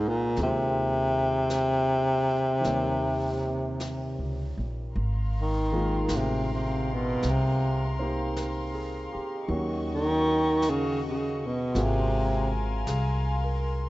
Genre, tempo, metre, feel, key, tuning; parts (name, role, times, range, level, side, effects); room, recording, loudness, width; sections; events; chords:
jazz ballad; 53 BPM; 4/4; swing 69% on 8ths; Ab major; A4 = 445 Hz
breathy baritone saxophone; melody; 0.0-12.6 s; Bb2 to Eb3; -26 LUFS; equal
warm concert grand piano; accompaniment; 0.0-13.9 s; Eb3 to Db5; -34 LUFS; equal
upright bass; bass; 0.0-13.9 s; Ab1 to Eb2; -30 LUFS; equal
jazz brush drum kit; drums; 0.4-13.9 s; brushed snare drum, hi-hat, snare drum; -44 LUFS; equal
warm chamber string section; sustained chords; 5.0-13.9 s; Gb4 to Db6; -37 LUFS; left 2 dB
moderate plate reverb, RT60 2.5 s; rough home demo mix, nothing above 7.9 kHz; -25 LUFS; side -17 dB against mid
0.0-4.9 A section; 4.9-13.9 B section
baritone saxophone solo 4.9-13.9
0.0 Ab69; 2.6 Eb7; 4.9 Ab69; 9.5 Ebm7; 11.7 Ab13